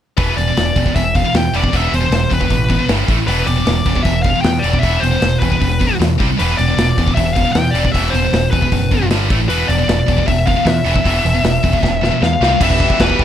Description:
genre	heavy metal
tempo	155 BPM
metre	4/4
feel	straight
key	E phrygian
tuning	A4 = 440 Hz
part	high-gain lead guitar	melody	0.2-13.2 s	B4 to G5	-18 LUFS	left 2 dB	distortion, slapback echo
part	heavy high-gain guitar	riff	0.2-13.2 s	E2 to C4	-21 LUFS	left 12 dB	distortion
part	scooped high-gain guitar	riff	0.2-13.2 s	E2 to C4	-20 LUFS	right 11 dB	distortion
part	growling picked electric bass	bass	0.2-13.2 s	E1 to E2	-18 LUFS	equal	overdrive
part	big rock drum kit	drums	0.2-13.2 s	china cymbal, crash cymbal, hi-hat, kick drum, snare drum	-19 LUFS	equal	none
part	rich studio string section	sustained chords	12.6-13.2 s	E3 to G4	-25 LUFS	right 2 dB	none
room	little or no reverb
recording	dark, warm production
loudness	-12 LUFS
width	side -10 dB against mid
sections	0.2-12.6 A section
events	drum fill 11.8-12.6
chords	0.2 E5; 2.9 G5; 3.1 A5; 3.3 E5; 6.2 C5; 6.4 E5; 9.1 G5; 9.3 A5; 9.5 E5; 12.4 C5; 12.6 Em

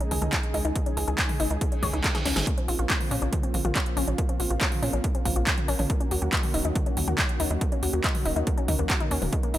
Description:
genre	uplifting trance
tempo	140 BPM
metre	4/4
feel	straight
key	unclear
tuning	A4 = 442 Hz
part	lush unison pad	sustained chords	0.0-9.6 s	C3 to Ab4	-33 LUFS	right 1 dB	chorus, sidechain pumping
part	analog pluck	arpeggios	0.0-9.6 s	Ab3 to Ab5	-32 LUFS	left 3 dB	chorus, cassette tape, sidechain pumping, digital delay
part	big-room dance drum kit	drums	0.0-9.6 s	handclaps, hi-hat, snare drum, toms	-29 LUFS	right 1 dB	sidechain pumping on hats, sidechain pumping on toms
part	tight sequencer bass	bass	0.1-9.6 s	Eb1 to Bb2	-28 LUFS	equal	sidechain pumping
part	electronic kick drum	drums	0.3-9.4 s	none	-27 LUFS	equal	none
part	reverse cymbal	sound effects	1.8-2.5 s	none	-35 LUFS	right 4 dB	none
room	digital ambience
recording	none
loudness	-23 LUFS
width	side -13 dB against mid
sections	0.0-9.6 A section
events	reverse cymbal 1.8-2.5; drum fill 2.1-2.5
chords	0.0 Dbsus2; 2.5 Bbmadd9; 5.9 Ebm7

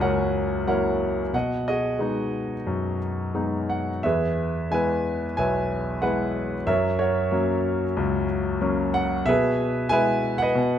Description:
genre	classical, lyrical solo piano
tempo	91 BPM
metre	4/4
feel	rubato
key	E major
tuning	A4 = 440 Hz
part	clear grand piano	solo	0.0-10.8 s	B1 to G#5	-22 LUFS	equal	none
room	light reverb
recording	dark, warm production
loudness	-22 LUFS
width	side -10 dB against mid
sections	0.0-10.8 A section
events	none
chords	0.0 F#7; 1.3 B6; 4.0 E; 6.7 F#; 9.3 E/B

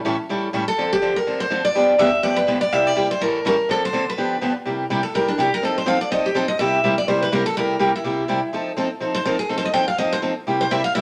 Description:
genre	jazz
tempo	248 BPM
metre	4/4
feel	swing 56% on 8ths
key	C mixolydian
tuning	A4 = 443 Hz
part	picked steel-string acoustic guitar	accompaniment	0.0-11.0 s	G2 to A4	-24 LUFS	equal	none
part	picked steel-string acoustic guitar	melody	0.7-11.0 s	D4 to G5	-23 LUFS	equal	none
room	wet studio reverb, RT60 0.9 s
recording	none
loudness	-21 LUFS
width	mono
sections	0.0-4.7 A section; 4.7-11.0 B section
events	steel-string acoustic guitar solo 4.7-11.0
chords	0.0 A7; 0.8 Dm7; 1.7 G7; 2.7 C7; 3.2 A7b9; 3.7 Dm7; 4.2 G7; 4.7 C7; 5.6 F7; 6.6 C7; 8.5 F7; 10.5 C7

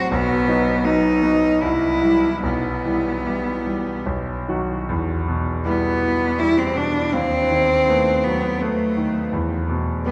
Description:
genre	classical, romantic duo for cello and grand piano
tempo	71-85 BPM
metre	3/4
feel	rubato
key	unclear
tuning	A4 = 441 Hz
part	rich cello	melody	0.0-10.1 s	A3 to F#4	-23 LUFS	equal	none
part	bright concert grand piano	accompaniment	0.0-10.1 s	B1 to F#4	-24 LUFS	equal	none
room	wet cathedral reverb, RT60 5.9 s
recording	recorded in a church or concert hall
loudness	-20 LUFS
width	mono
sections	0.0-4.9 A section; 4.9-10.1 B section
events	none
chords	0.1 B; 1.6 C; 2.4 Em/B; 4.1 B; 4.9 Em; 7.1 B7/D#; 9.3 E5

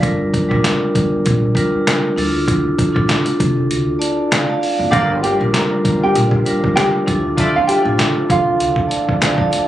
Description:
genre	hip hop, boom-bap hip-hop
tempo	98 BPM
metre	4/4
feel	swing 54% on 16ths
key	G minor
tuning	A4 = 440 Hz
part	vibraphone with medium hard mallets	accompaniment	0.0-9.7 s	G3 to A5	-18 LUFS	equal	cassette tape, high-pass filter, low-pass filter
part	upright bass	bass	0.0-8.8 s	F#1 to D2	-21 LUFS	equal	none
part	trip hop sampler-style drum kit	drums	0.0-9.7 s	handclaps, hi-hat, kick drum, snare drum	-19 LUFS	equal	none
part	nylon-string guitar	melody	4.9-9.4 s	F4 to Bb5	-18 LUFS	right 2 dB	high-pass filter, low-pass filter, tape echo
part	bright tonewheel organ	sustained chords	4.9-9.7 s	D3 to F4	-28 LUFS	equal	chorus vibrato, fast rotary speaker, high-pass filter, low-pass filter
part	warm horn section	stabs	4.9-7.6 s	A3 to D5	-23 LUFS	left 1 dB	high-pass filter, low-pass filter, tape echo
room	light reverb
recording	recorded on a phone in the room, club ambience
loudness	-14 LUFS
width	side -13 dB against mid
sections	0.0-4.9 A section; 4.9-9.7 B section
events	kick muted 3.7-4.9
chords	0.0 Gm7; 2.2 Dm; 4.9 Gm7; 7.1 Dm

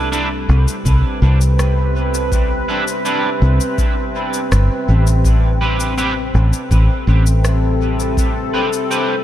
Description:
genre	ambient dub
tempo	82 BPM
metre	4/4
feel	straight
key	unclear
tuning	A4 = 440 Hz
part	deep dark ambient pad	sustained chords	0.0-9.2 s	C4 to E5	-21 LUFS	left 1 dB	chorus, built-in reverb
part	electric guitar at the edge of break-up	stabs	0.0-9.1 s	C4 to B4	-23 LUFS	right 2 dB	analog chorus, dub echo
part	fingered electric bass	bass	0.0-8.5 s	G1 to C2	-14 LUFS	equal	none
part	electronic cabasa and rim click	drums	0.1-9.1 s	none	-28 LUFS	left 3 dB	dub echo
part	electronic kick drum	drums	0.9-8.3 s	none	-18 LUFS	equal	overdrive
room	light reverb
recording	none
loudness	-13 LUFS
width	side -12 dB against mid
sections	0.0-9.2 A section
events	none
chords	0.0 Cmaj7; 5.2 Am7

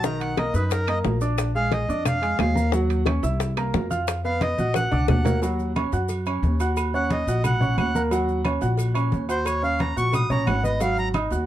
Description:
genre	Afro-Cuban jazz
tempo	178 BPM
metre	4/4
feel	straight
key	Eb minor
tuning	A4 = 440 Hz
part	accordion	melody	0.0-11.1 s	A#4 to Eb6	-26 LUFS	equal	plate reverb
part	warm concert grand piano	accompaniment	0.0-11.5 s	D#3 to F#6	-27 LUFS	right 2 dB	none
part	upright bass	bass	0.0-11.5 s	Ab1 to F#2	-25 LUFS	equal	none
part	bongos and cowbell	percussion	0.0-11.5 s	none	-31 LUFS	left 11 dB	none
part	congas	percussion	0.0-11.5 s	none	-28 LUFS	left 1 dB	none
part	maracas	percussion	0.0-11.5 s	none	-42 LUFS	left 5 dB	none
part	timbales and agogo bells	percussion	0.2-11.3 s	none	-32 LUFS	right 7 dB	none
part	claves	percussion	0.4-11.3 s	none	-38 LUFS	left 9 dB	none
room	moderate studio ambience, RT60 0.5 s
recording	dark, warm production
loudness	-21 LUFS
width	side -12 dB against mid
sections	0.0-5.4 A section; 5.4-11.5 A section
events	accordion solo 0.0-11.5; drum fill 4.4-5.4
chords	0.0 Bmaj7; 1.4 Bb7; 2.7 Ebm7; 3.4 C7sus4; 4.1 Bmaj7#11; 4.8 Bbaug; 5.4 Ebm7; 10.8 Absus2

